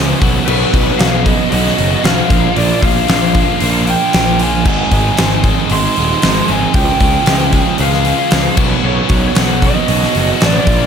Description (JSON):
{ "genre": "quiet-loud alternative rock", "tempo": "115 BPM", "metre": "4/4", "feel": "straight", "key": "unclear", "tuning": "A4 = 438 Hz", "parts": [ { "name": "overdriven semi-hollow guitar", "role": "riff", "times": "0.0-10.9 s", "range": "Ab2 to Ab4", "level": "-19 LUFS", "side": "right 14 dB", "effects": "none" }, { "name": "scooped high-gain guitar", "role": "riff", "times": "0.0-10.9 s", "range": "Ab2 to Ab4", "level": "-19 LUFS", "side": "left 15 dB", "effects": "distortion" }, { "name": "fuzz picked electric bass", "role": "bass", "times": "0.0-10.8 s", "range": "Eb1 to Db2", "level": "-17 LUFS", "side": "left 1 dB", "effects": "overdrive" }, { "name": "huge arena drum kit", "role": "drums", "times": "0.2-10.8 s", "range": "crash cymbal, hi-hat, kick drum, snare drum", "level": "-15 LUFS", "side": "equal", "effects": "none" }, { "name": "lead guitar through a small cranked amp", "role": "melody", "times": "0.5-10.9 s", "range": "B4 to C6", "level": "-18 LUFS", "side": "equal", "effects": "overdrive" } ], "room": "little or no reverb", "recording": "none", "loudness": "-10 LUFS", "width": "side -7 dB against mid", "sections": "0.0-10.9 A section", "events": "none", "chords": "0.2 Bsus2; 2.3 Bb; 4.6 Ab; 6.7 Db; 8.6 Bsus2", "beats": "| 0.47 1.00 1.52 2.04 | 2.56 3.08 3.60 4.13 | 4.65 5.17 5.69 6.22 | 6.74 7.26 7.79 8.31 | 8.83 9.36 9.88 10.40" }